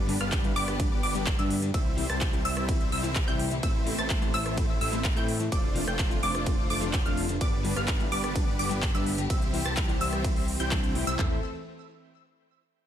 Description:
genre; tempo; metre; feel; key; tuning
EDM, festival progressive house; 127 BPM; 4/4; straight; A minor; A4 = 439 Hz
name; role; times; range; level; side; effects
warm symphonic string section; sustained chords; 0.0-11.4 s; C3 to A4; -38 LUFS; left 1 dB; sidechain pumping
wide unison pluck; arpeggios; 0.0-11.4 s; D6 to A6; -34 LUFS; equal; sidechain pumping, ping-pong delay
dense compressed supersaw; riff; 0.0-11.4 s; G3 to A5; -34 LUFS; equal; sidechain pumping, ping-pong delay
fat analog bass; bass; 0.0-11.4 s; F1 to A2; -33 LUFS; equal; tube saturation, sidechain pumping
electric guitar at the edge of break-up; accompaniment; 0.1-11.4 s; G2 to G4; -35 LUFS; left 2 dB; sidechain pumping, ping-pong delay
big-room dance drum kit; drums; 0.1-11.2 s; handclaps, hi-hat, ride cymbal, rim click; -34 LUFS; equal; none
big-room dance drum kit; drums; 0.3-11.3 s; handclaps, kick drum, toms; -28 LUFS; equal; none
room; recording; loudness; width
little or no reverb; none; -25 LUFS; side -10 dB against mid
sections
0.0-11.2 A section; 11.2-12.9 B section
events
drop 0.0-11.2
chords
0.0 G; 1.7 C; 3.6 Am; 5.5 F6; 7.4 G; 9.3 C; 11.2 Am

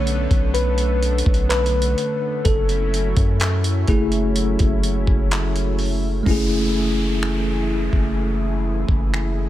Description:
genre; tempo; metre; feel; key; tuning
contemporary R&B; 63 BPM; 4/4; straight; F# minor; A4 = 440 Hz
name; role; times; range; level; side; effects
bell-like tine electric piano; accompaniment; 0.0-9.5 s; D3 to C#5; -23 LUFS; left 1 dB; medium stereo tremolo
lush unison pad; sustained chords; 0.0-9.5 s; D3 to G#4; -27 LUFS; left 1 dB; chorus
long sustained 808-style bass; bass; 0.0-9.5 s; F#1 to F#2; -22 LUFS; equal; none
dusty soul sampler-style drum kit; drums; 0.1-9.4 s; finger snaps, handclaps, hi-hat, kick drum; -21 LUFS; equal; none
downlifter; sound effects; 6.3-9.5 s; none; -31 LUFS; equal; none
room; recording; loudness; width
little or no reverb; none; -17 LUFS; side -13 dB against mid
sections
0.0-6.3 A section; 6.3-9.5 B section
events
tine electric piano solo 0.0-6.3; hi-hats muted 6.3-9.5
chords
0.0 Bm9; 2.5 F#m9

